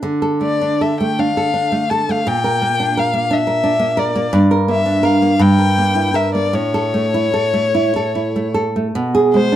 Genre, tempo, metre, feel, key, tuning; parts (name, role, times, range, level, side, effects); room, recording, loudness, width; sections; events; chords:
romantic duo for violin and classical guitar; 49-60 BPM (dotted quarters); 6/8; rubato; D minor; A4 = 442 Hz
nylon-string guitar; accompaniment; 0.0-9.6 s; G2 to Bb4; -16 LUFS; right 2 dB
warm violin; melody; 0.4-9.6 s; C5 to A5; -18 LUFS; left 4 dB; slapback echo
light reverb; dry, close 1970s-style studio recording; -14 LUFS; side -11 dB against mid
0.0-9.6 A section
0.0 Dm; 2.3 Gm/Bb; 4.3 Gm; 5.4 Edim/G; 6.6 A; 8.9 E/B (rootless)